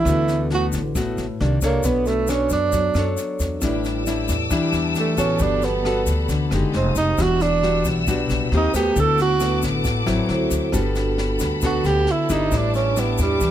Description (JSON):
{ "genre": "bossa nova", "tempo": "135 BPM", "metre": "4/4", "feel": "straight", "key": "D major", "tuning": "A4 = 442 Hz", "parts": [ { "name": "breathy tenor saxophone", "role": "melody", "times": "0.0-13.5 s", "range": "G3 to A4", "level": "-21 LUFS", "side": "right 5 dB", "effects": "none" }, { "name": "nylon-string guitar", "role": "accompaniment", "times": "0.0-13.5 s", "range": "A2 to C#5", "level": "-23 LUFS", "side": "left 3 dB", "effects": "none" }, { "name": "vibraphone with soft mallets", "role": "accompaniment", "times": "0.0-13.5 s", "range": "D4 to Eb5", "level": "-30 LUFS", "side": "right 2 dB", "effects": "none" }, { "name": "upright bass", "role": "bass", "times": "0.0-13.5 s", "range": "E1 to F#2", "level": "-24 LUFS", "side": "equal", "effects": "none" }, { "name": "jazz brush drum kit", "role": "drums", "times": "0.1-13.5 s", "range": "kick drum, rim click, snare drum", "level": "-28 LUFS", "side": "equal", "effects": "none" }, { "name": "egg shaker", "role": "percussion", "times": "0.1-13.5 s", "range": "none", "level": "-34 LUFS", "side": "left 6 dB", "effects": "none" }, { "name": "warm studio string section", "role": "sustained chords", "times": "3.6-13.5 s", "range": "A4 to E6", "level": "-29 LUFS", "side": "left 3 dB", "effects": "none" } ], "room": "light reverb", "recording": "close, detailed microphones", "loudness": "-18 LUFS", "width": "side -11 dB against mid", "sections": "0.0-10.7 A section; 10.7-13.5 A section", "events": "tenor saxophone solo 0.0-13.5", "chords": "0.1 D6; 1.4 Cm9; 1.8 Bm9; 3.6 A7sus4; 5.4 Gmaj9; 6.7 Fm9; 7.2 Em9; 8.5 Eb6; 9.0 D6; 10.3 D9; 10.7 Gmaj9; 12.5 A7sus4" }